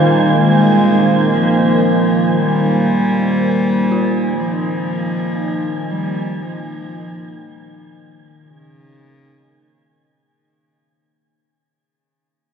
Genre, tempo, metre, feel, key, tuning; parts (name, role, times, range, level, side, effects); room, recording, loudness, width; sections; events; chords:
dark ambient drone; free time; A4 = 435 Hz
warm cello; melody; 0.0-10.0 s; Db3 to Ab3; -18 LUFS; equal
deep dark ambient pad; sustained chords; 0.0-10.5 s; Bb3 to C5; -18 LUFS; equal; chorus, built-in reverb
dark detuned synth bell; arpeggios; 0.0-10.5 s; Db4 to F4; -34 LUFS; left 4 dB
bowed-like drone; drone; 0.0-10.6 s; Eb3; -20 LUFS; equal; built-in reverb, phaser
wind-like tuned noise texture; texture; 0.0-10.5 s; Ab5; -24 LUFS; right 3 dB; built-in reverb
wet huge ambient reverb, RT60 7.3 s; dark, warm production, nothing above 10.6 kHz; -13 LUFS; side -7 dB against mid
0.0-10.5 A section
fade-out 0.0-10.5
0.0 Bbm7